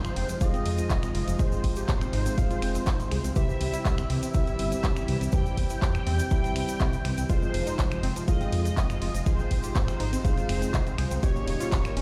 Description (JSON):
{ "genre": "progressive house", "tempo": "122 BPM", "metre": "4/4", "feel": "straight", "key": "F minor", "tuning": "A4 = 438 Hz", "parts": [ { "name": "expressive synth lead", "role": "melody", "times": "0.0-12.0 s", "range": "C5 to G5", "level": "-38 LUFS", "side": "equal", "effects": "ensemble chorus, sidechain pumping, digital delay" }, { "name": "lush unison pad", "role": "sustained chords", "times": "0.0-12.0 s", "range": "C3 to G4", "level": "-39 LUFS", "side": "equal", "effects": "chorus, sidechain pumping" }, { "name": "unison pluck", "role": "arpeggios", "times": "0.0-12.0 s", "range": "F3 to Ab4", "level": "-39 LUFS", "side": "equal", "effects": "sidechain pumping, tape echo" }, { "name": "felt-muted upright piano", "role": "stabs", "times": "0.0-12.0 s", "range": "G3 to F5", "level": "-37 LUFS", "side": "equal", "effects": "sidechain pumping" }, { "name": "dark detuned saw bass", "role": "bass", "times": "0.0-12.0 s", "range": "Eb1 to F2", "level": "-32 LUFS", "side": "equal", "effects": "sidechain pumping" }, { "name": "house drum kit", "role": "drums", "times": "0.0-12.0 s", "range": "finger snaps, handclaps, hi-hat, ride cymbal", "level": "-39 LUFS", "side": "equal", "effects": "sidechain pumping on hats, sidechain pumping on cymbals" }, { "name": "egg shaker", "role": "percussion", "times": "0.1-11.9 s", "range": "none", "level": "-46 LUFS", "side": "equal", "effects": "none" }, { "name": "electronic kick drum", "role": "drums", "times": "0.4-11.8 s", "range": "none", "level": "-28 LUFS", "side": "equal", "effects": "none" } ], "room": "little or no reverb", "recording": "played on a big sound system in a bare room, large studio reverb", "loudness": "-27 LUFS", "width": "mono", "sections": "0.0-12.0 A section", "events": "none", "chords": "0.0 Fm7; 3.4 C; 7.3 Fm7; 11.2 Eb7" }